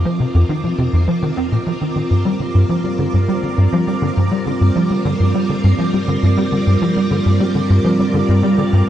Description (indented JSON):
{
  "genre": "ambient, sequencer-driven space music",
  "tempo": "102 BPM",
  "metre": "4/4",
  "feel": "straight",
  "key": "unclear",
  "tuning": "A4 = 440 Hz",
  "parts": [
    { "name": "string machine, full ensemble", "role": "sustained chords", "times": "0.0-8.9 s", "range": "G3 to Eb5", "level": "-19 LUFS", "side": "equal", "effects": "ensemble chorus" },
    { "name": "tight sequencer bass", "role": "riff", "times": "0.0-8.8 s", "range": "F2 to C4", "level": "-15 LUFS", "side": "equal", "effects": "ensemble chorus, tape echo" },
    { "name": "pulsing gated texture", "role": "texture", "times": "0.0-8.9 s", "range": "D6", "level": "-30 LUFS", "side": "right 5 dB", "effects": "chorus, built-in reverb" }
  ],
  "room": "moderate huge ambient reverb, RT60 9.0 s",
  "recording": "dark, warm production",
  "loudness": "-14 LUFS",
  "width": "side -11 dB against mid",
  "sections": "0.0-8.9 A section",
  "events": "fade-in on synth texture 0.0-8.9",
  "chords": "0.0 F5; 2.1 Gm7"
}